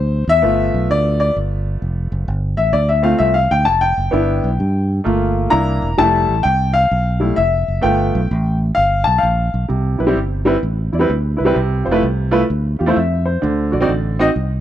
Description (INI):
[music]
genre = uptempo gospel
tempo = 129 BPM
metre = 4/4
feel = swing 65% on 8ths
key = C major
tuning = A4 = 438 Hz
[part]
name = clear upright piano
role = accompaniment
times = 0.0-14.3 s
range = C3 to Bb5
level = -16 LUFS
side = left 1 dB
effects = none
[part]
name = fingered electric bass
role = bass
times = 0.0-14.6 s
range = E1 to G2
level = -18 LUFS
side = right 1 dB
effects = none
[sound]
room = studio reverb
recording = dry, close 1970s-style studio recording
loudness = -14 LUFS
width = side -11 dB against mid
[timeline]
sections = 0.0-9.7 A section; 9.7-14.6 B section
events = upright piano solo 0.0-9.7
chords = 0.4 G9; 2.3 G9sus4; 4.1 G6; 5.1 Gm7; 5.5 C9; 6.0 Fmaj7; 7.8 G9; 9.7 Cmaj7; 11.6 Fmaj7; 13.4 D7b9